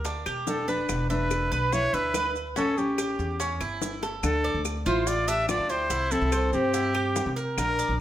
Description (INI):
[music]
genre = latin, Cuban son and guajira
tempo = 143 BPM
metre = 4/4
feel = straight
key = D minor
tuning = A4 = 443 Hz
[part]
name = Cuban tres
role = arpeggios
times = 0.0-8.0 s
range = C#4 to E5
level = -31 LUFS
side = right 2 dB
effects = tape echo
[part]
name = upright bass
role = bass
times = 0.0-8.0 s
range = E1 to C3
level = -31 LUFS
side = equal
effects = none
[part]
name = maracas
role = percussion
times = 0.0-8.0 s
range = none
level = -39 LUFS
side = right 7 dB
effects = none
[part]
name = bongos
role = percussion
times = 0.1-7.8 s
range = none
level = -37 LUFS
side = left 5 dB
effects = none
[part]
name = claves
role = percussion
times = 0.3-7.8 s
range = none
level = -39 LUFS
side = left 5 dB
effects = none
[part]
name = breathy trumpet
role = melody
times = 0.5-8.0 s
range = G4 to E5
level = -28 LUFS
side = equal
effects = plate reverb
[part]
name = nylon-string guitar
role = second line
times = 0.5-8.0 s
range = C4 to G4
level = -31 LUFS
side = left 3 dB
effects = none
[sound]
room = moderate large studio reverb, RT60 0.9 s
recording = none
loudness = -24 LUFS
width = side -12 dB against mid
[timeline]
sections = 0.0-4.2 A section; 4.2-8.0 B section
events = drum fill 4.0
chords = 0.0 G5; 0.9 E5; 2.6 A7; 4.2 Dm; 5.9 C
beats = 0.05 0.47 | 0.89 1.31 1.72 2.14 | 2.56 2.98 3.40 3.82 | 4.24 4.65 5.07 5.49 | 5.91 6.33 6.74 7.16 | 7.58 8.00